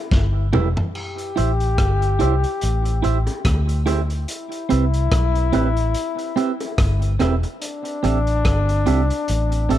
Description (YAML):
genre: roots reggae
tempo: 72 BPM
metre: 4/4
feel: swing 57% on 16ths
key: A minor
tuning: A4 = 441 Hz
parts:
  - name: clear trombone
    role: second line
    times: 0.0-9.8 s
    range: D4 to G4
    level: -26 LUFS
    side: left 5 dB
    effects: tape echo
  - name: vintage muted fingered electric bass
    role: bass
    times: 0.1-9.8 s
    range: E1 to D2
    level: -19 LUFS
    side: equal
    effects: none
  - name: crunchy breakbeat drum kit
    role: drums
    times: 0.1-9.8 s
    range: hi-hat, kick drum, rim click, snare drum, splash cymbal, toms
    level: -24 LUFS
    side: equal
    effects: none
  - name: bongos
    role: percussion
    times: 0.1-9.1 s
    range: none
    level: -31 LUFS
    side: right 1 dB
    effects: none
  - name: clean electric guitar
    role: accompaniment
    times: 0.5-9.8 s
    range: C4 to E5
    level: -25 LUFS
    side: right 7 dB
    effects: tape echo
room: little or no reverb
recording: none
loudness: -18 LUFS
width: side -12 dB against mid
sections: 0.0-9.8 A section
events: drum fill 0.1-0.9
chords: 0.0 Cmaj7 (rootless); 0.9 Am7; 4.3 Cmaj7; 7.6 Am7